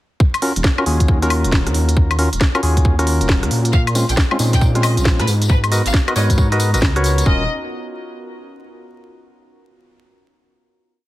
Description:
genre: UK garage, two-step garage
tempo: 136 BPM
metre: 4/4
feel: swing 64% on 16ths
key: Eb minor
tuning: A4 = 440 Hz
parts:
  - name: electronic kick drum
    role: drums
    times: 0.2-7.4 s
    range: none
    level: -15 LUFS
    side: equal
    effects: none
  - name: garage drum kit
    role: drums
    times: 0.3-7.2 s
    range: hi-hat, rim click, snare drum, woodblock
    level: -21 LUFS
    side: left 1 dB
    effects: none
  - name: percussive organ stab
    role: stabs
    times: 0.4-7.4 s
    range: Ab3 to Eb5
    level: -22 LUFS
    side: equal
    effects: chorus, tape echo
  - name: dark detuned saw bass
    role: bass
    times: 0.6-7.5 s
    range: Eb1 to Bb2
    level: -18 LUFS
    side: equal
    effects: none
  - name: warm studio violin section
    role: melody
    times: 3.7-7.4 s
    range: Cb5 to G5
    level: -27 LUFS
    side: left 1 dB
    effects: tape echo
  - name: airy breathy pad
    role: sustained chords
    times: 3.7-7.5 s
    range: Cb4 to Bb5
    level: -32 LUFS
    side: equal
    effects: chorus, vintage 12-bit sampler grit, sidechain pumping
  - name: tambourine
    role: percussion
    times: 3.7-7.2 s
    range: none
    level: -28 LUFS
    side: left 4 dB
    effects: none
room: little or no reverb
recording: dense, heavily limited modern master, vinyl crackle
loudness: -14 LUFS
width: side -16 dB against mid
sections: 0.2-7.3 drop; 7.3-9.0 final chord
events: drop 0.2-7.3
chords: 0.2 Ebm9; 3.7 Bbm9; 5.3 Abm9; 7.3 Ebm9 (rootless)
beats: | 0.20 0.64 1.08 1.52 | 1.97 2.41 2.85 3.29 | 3.73 4.17 4.61 5.05 | 5.50 5.94 6.38 6.82 | 7.26

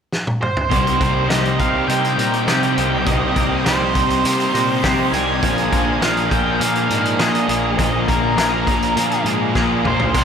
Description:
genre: rock, shoegaze and dream pop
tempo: 102 BPM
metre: 4/4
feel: straight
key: C minor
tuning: A4 = 439 Hz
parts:
  - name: loose indie drum kit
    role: drums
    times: 0.1-10.2 s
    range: crash cymbal, hi-hat, kick drum, snare drum, toms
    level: -22 LUFS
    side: equal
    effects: none
  - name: octave-fuzz lead guitar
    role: melody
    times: 0.4-10.2 s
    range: Bb4 to Ab5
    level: -22 LUFS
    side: right 2 dB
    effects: distortion, diffuse ambient delay
  - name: sweeping resonant pad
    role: sustained chords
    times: 0.7-10.2 s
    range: G4 to Eb6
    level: -28 LUFS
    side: right 1 dB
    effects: chorus
  - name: twangy electric guitar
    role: arpeggios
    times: 0.7-10.2 s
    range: F3 to Ab4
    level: -28 LUFS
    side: left 8 dB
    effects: analog chorus, diffuse ambient delay
  - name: overdriven electric guitar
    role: riff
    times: 0.7-10.2 s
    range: Bb2 to Ab4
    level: -22 LUFS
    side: right 8 dB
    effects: reverse reverb
  - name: thick fuzz guitar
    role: riff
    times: 0.7-10.2 s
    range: Bb2 to C4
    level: -22 LUFS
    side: left 8 dB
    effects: distortion, ensemble chorus
  - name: fuzz picked electric bass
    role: bass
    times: 0.7-10.2 s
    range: Bb1 to C3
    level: -24 LUFS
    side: equal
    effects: overdrive
room: wet cathedral reverb, RT60 4.7 s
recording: dreamy mix soaked in reverb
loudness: -15 LUFS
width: side -7 dB against mid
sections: 0.7-10.2 A section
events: drum fill 0.1-0.7, 9.6-10.1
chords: 0.0 N.C.; 0.7 Cm7; 5.4 Bb7sus4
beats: 0.12 | 0.71 1.30 1.89 2.48 | 3.07 3.66 4.25 4.84 | 5.43 6.02 6.61 7.20 | 7.79 8.38 8.97 9.56 | 10.15

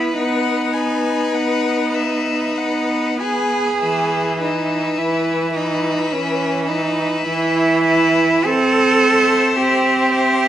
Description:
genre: classical, slow romantic movement for string quartet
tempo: 45-55 BPM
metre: 4/4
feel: rubato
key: E major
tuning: A4 = 440 Hz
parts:
  - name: clear violin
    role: second line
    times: 0.0-10.5 s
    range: B4 to C5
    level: -25 LUFS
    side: left 5 dB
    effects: none
  - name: bright cello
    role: bass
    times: 0.0-10.5 s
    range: C#4 to A4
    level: -18 LUFS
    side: right 2 dB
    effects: none
  - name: rich violin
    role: melody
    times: 0.1-10.5 s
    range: E5 to G#5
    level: -25 LUFS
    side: left 10 dB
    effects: none
  - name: clear viola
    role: accompaniment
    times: 0.1-10.5 s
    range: E3 to C4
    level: -21 LUFS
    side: equal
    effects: none
room: moderate recital hall reverb, RT60 1.7 s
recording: nothing above 10.6 kHz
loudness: -15 LUFS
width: side -11 dB against mid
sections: 0.0-10.5 A section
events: none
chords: 0.0 B; 3.8 E; 8.4 C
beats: 0.14 1.33 2.56 | 3.82 4.98 6.12 7.24 | 8.45 9.56

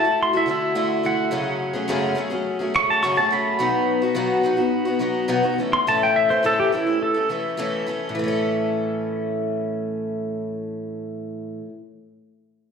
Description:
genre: rock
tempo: 106 BPM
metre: 4/4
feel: straight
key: A major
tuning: A4 = 440 Hz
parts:
  - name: pedal steel guitar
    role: melody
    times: 0.0-7.3 s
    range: E4 to C#6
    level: -22 LUFS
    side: right 2 dB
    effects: slapback echo, analog delay
  - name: picked twelve-string acoustic guitar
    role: accompaniment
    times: 0.0-11.8 s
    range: F#2 to A4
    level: -22 LUFS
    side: left 2 dB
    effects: slapback echo
room: moderate lush hall reverb, RT60 1.9 s, small room ambience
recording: live gig heard through the venue's PA, club reverb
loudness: -20 LUFS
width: side -6 dB against mid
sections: 0.0-8.1 A section; 8.1-10.4 B section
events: pedal steel guitar solo 0.0-8.1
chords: 0.0 Dadd9; 1.3 F#madd9; 3.6 B; 5.6 A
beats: 0.19 0.76 | 1.32 1.89 2.45 3.02 | 3.59 4.15 4.72 5.29 | 5.85 6.42 6.99 7.56 | 8.13 8.70 9.27 9.84

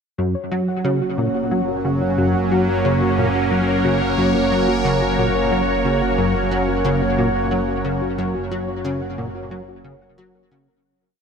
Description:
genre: ambient, sequencer-driven space music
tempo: 90 BPM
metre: 4/4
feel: straight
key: F# major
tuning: A4 = 440 Hz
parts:
  - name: sweeping resonant pad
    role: sustained chords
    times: 0.2-10.9 s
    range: F#3 to C#5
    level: -20 LUFS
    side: right 1 dB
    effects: chorus
  - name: soft round pluck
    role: arpeggios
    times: 0.2-10.8 s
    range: F#4 to F#5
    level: -28 LUFS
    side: moving between left 7 dB and right 2 dB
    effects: chorus, auto-pan, tape echo
  - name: plucky analog bass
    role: riff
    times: 0.2-10.7 s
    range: F#2 to F#3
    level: -23 LUFS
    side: left 1 dB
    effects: ensemble chorus, tape echo
  - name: analog drone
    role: bass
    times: 1.6-10.8 s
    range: F#1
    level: -28 LUFS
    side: equal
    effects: chorus
  - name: bubbling stepped-filter texture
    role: texture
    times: 0.7-10.9 s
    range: F#4 to F#5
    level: -29 LUFS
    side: right 2 dB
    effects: chorus, built-in reverb
room: wet huge ambient reverb, RT60 7.7 s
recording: dreamy mix soaked in reverb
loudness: -17 LUFS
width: side -6 dB against mid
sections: 0.2-10.8 A section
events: fade-out 7.3-10.8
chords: 0.2 F#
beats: | 0.18 0.85 1.51 2.18 | 2.85 3.52 4.18 4.85 | 5.51 6.18 6.85 7.51 | 8.18 8.85 9.52 10.18

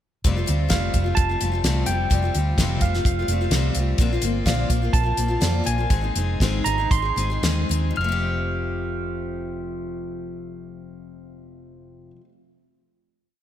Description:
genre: folk rock and heartland rock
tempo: 109-129 BPM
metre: 4/4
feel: straight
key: F major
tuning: A4 = 440 Hz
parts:
  - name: picked steel-string acoustic guitar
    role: accompaniment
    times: 0.2-12.3 s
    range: F2 to Ab4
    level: -27 LUFS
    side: left 4 dB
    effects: none
  - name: hollow-body short-scale fingered electric bass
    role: bass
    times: 0.2-12.1 s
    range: F1 to F2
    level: -24 LUFS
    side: right 1 dB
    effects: none
  - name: damped 70s drum kit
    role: drums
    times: 0.2-7.8 s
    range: hi-hat, kick drum, snare drum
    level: -23 LUFS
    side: equal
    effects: none
  - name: bright tine electric piano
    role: melody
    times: 0.7-12.1 s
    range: F5 to F6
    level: -28 LUFS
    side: moving between left 5 dB and right 7 dB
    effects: auto-pan, slapback echo
room: light reverb, small room ambience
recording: none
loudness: -20 LUFS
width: side -11 dB against mid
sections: 0.3-8.0 verse; 8.0-12.3 final chord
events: slowing down 4.0-8.0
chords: 0.3 Fadd9; 4.0 Bbadd9; 5.9 Ab; 8.0 Fadd9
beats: | 0.26 0.72 1.19 1.65 | 2.12 2.59 3.06 3.52 | 3.99 4.46 4.93 5.42 | 5.90 6.40 6.91 7.43 | 7.97 8.52 9.07 9.62 | 10.16 10.71 11.25 11.80

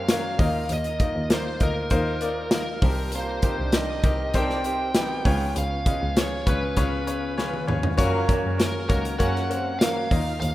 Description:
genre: piano-driven pop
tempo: 99 BPM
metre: 4/4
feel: straight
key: unclear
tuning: A4 = 440 Hz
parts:
  - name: smooth overdriven lead guitar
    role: melody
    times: 0.0-10.5 s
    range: Bb4 to G5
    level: -30 LUFS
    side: right 1 dB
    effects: none
  - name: mellow French horn section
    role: second line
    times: 0.0-10.2 s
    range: Bb2 to Eb4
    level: -33 LUFS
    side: right 3 dB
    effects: none
  - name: bright grand piano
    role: accompaniment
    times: 0.0-10.5 s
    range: G2 to Eb5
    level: -28 LUFS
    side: left 3 dB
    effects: none
  - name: tonewheel organ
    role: sustained chords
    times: 0.0-10.5 s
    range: Db3 to Bb4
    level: -37 LUFS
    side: right 2 dB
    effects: none
  - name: clear double bass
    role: bass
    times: 0.0-10.5 s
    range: C2 to Gb2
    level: -29 LUFS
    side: equal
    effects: none
  - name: modern studio drum kit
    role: drums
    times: 0.1-10.5 s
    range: hi-hat, kick drum, snare drum, toms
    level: -24 LUFS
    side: equal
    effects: none
room: light reverb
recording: rough home demo mix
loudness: -21 LUFS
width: side -15 dB against mid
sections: 0.0-10.5 A section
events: drum fill 7.4-8.0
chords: 0.4 Ebsus2; 2.8 Cm7; 5.3 Db7; 8.0 Gb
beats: 0.09 | 0.70 1.30 1.91 2.52 | 3.13 3.73 4.34 4.95 | 5.55 6.16 6.77 7.38 | 7.98 8.59 9.20 9.81 | 10.41

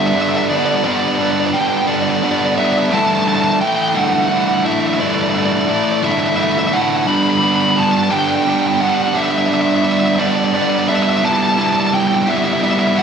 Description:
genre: rock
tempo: 58 BPM (dotted quarters)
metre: 6/8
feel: straight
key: G major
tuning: A4 = 440 Hz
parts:
  - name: fuzz lead guitar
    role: melody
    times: 0.0-13.0 s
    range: D5 to B5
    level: -18 LUFS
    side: equal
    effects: distortion, slapback echo
  - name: fuzz guitar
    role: riff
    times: 0.0-13.0 s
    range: G2 to G4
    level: -15 LUFS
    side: right 1 dB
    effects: distortion
room: moderate large studio reverb, RT60 1.3 s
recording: none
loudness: -13 LUFS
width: side -7 dB against mid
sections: 0.0-13.0 A section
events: none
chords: 0.0 G; 2.9 Asus4/G; 7.1 G; 11.2 Em/G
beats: | 0.84 1.88 | 2.92 3.96 | 4.99 6.03 | 7.07 8.11 | 9.15 10.19 | 11.23 12.27

